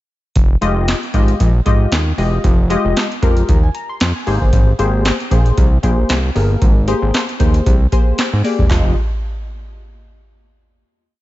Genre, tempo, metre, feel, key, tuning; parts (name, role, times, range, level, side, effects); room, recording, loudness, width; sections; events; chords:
early-eighties boogie funk; 115 BPM; 4/4; swing 56% on 16ths; F minor; A4 = 439 Hz
fat analog bass; bass; 0.4-8.9 s; E1 to Ab2; -16 LUFS; equal
booming analog drum machine; drums; 0.4-8.8 s; handclaps, hi-hat, kick drum, snare drum, toms; -15 LUFS; equal
funky polysynth comp; accompaniment; 0.6-8.9 s; Ab3 to C6; -20 LUFS; left 2 dB; chorus
digital ambience; nothing above 7.8 kHz; -12 LUFS; side -16 dB against mid
0.4-8.7 verse; 8.7-10.8 final chord
0.4 Fm9; 4.3 Abmaj9; 8.7 Fm9